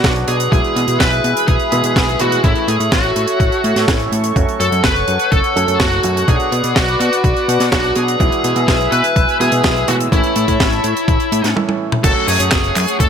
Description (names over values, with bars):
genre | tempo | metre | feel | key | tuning
italo disco | 125 BPM | 4/4 | straight | F# minor | A4 = 440 Hz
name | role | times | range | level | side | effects
smooth overdriven lead guitar | melody | 0.0-13.1 s | E4 to B4 | -18 LUFS | equal | digital delay
warm analog pad | sustained chords | 0.0-13.1 s | A3 to E6 | -21 LUFS | left 2 dB | chorus
warm grand piano | stabs | 0.0-13.1 s | A2 to A4 | -23 LUFS | right 6 dB | ping-pong delay
fat analog bass | bass | 0.0-13.1 s | F#1 to B2 | -20 LUFS | equal | none
electronic kick drum | drums | 0.0-13.1 s | none | -17 LUFS | equal | overdrive
tight funk drum kit | drums | 0.0-13.1 s | cabasa, crash cymbal, handclaps, hi-hat, snare drum, toms | -20 LUFS | right 1 dB | none
room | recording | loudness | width
light reverb, studio reverb | none | -12 LUFS | side -7 dB against mid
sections
0.0-12.0 A section; 12.0-13.1 B section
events
break 11.6-12.0; drum fill 11.6-12.0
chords
0.0 Bm; 0.5 E/B; 2.4 A; 4.4 F#m; 6.3 Bm; 8.2 E/B; 10.1 A; 12.0 F#m